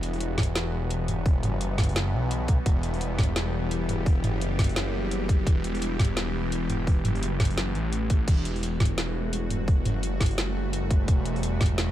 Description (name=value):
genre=half-time drum and bass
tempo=171 BPM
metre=4/4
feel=swing 60% on 16ths, half-time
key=E minor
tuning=A4 = 440 Hz
part: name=bowed-like drone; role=sustained chords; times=0.0-11.9 s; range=E3 to G4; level=-32 LUFS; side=left 1 dB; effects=built-in reverb, vintage 12-bit sampler grit, sidechain pumping
part: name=phased detuned saw bass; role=bass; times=0.0-11.9 s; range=E1 to B1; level=-28 LUFS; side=equal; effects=phaser, tube saturation
part: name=drum and bass drum kit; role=drums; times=0.0-11.9 s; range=crash cymbal, hi-hat, snare drum, toms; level=-29 LUFS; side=equal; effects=none
part: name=electronic kick drum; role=drums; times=0.4-11.7 s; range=none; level=-23 LUFS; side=equal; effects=none
room=little or no reverb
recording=none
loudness=-23 LUFS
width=side -13 dB against mid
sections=0.0-11.9 A section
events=none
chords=0.0 Emadd9